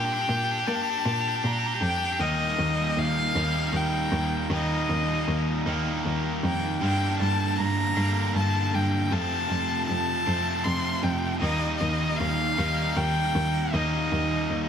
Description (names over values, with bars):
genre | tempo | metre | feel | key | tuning
post-rock | 78 BPM | 3/4 | straight | unclear | A4 = 440 Hz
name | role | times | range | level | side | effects
rich violin | melody | 0.0-14.7 s | Eb5 to C6 | -28 LUFS | left 2 dB | analog delay
cranked stack guitar | riff | 0.0-14.7 s | F2 to G4 | -28 LUFS | right 1 dB | overdrive, spring reverb
warm cello | bass | 0.0-14.7 s | Eb2 to Bb3 | -28 LUFS | equal | none
room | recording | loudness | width
light reverb, small room reverb | none | -23 LUFS | side -8 dB against mid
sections
0.0-2.2 A section; 2.2-14.7 B section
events
build-up 0.0-2.2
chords
0.0 Bb6; 2.2 Eb; 6.8 Gm; 9.1 F; 11.4 Eb